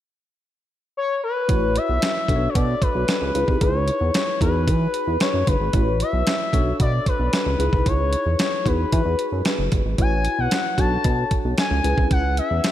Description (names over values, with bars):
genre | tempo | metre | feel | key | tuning
early-eighties boogie funk | 113 BPM | 4/4 | straight | E major | A4 = 440 Hz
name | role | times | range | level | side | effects
expressive portamento lead | melody | 1.0-12.7 s | B4 to A5 | -24 LUFS | left 3 dB | chorus, diffuse ambient delay
tine electric piano | accompaniment | 1.5-12.7 s | C#4 to C#5 | -28 LUFS | left 1 dB | phaser
chorused synth bass | bass | 1.5-12.6 s | F#1 to E3 | -22 LUFS | right 1 dB | none
detuned 8-bit digital drum machine | drums | 1.5-12.7 s | hi-hat, kick drum, snare drum | -22 LUFS | equal | none
room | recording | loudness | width
light reverb, digital ambience | none | -18 LUFS | side -12 dB against mid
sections
0.0-1.5 A section; 1.5-12.7 B section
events
none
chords
0.0 N.C.; 1.5 A69; 2.3 Bm7; 3.3 C#m7; 4.4 Emaj7; 5.7 A69; 6.5 Bm7; 7.6 C#m7; 8.7 Emaj7; 10.0 A69; 10.8 Bm7; 11.8 C#m7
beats
0.43 0.96 | 1.49 2.02 2.55 3.08 | 3.61 4.14 4.67 5.21 | 5.74 6.27 6.80 7.33 | 7.86 8.39 8.92 9.45 | 9.98 10.52 11.05 11.58 | 12.11 12.64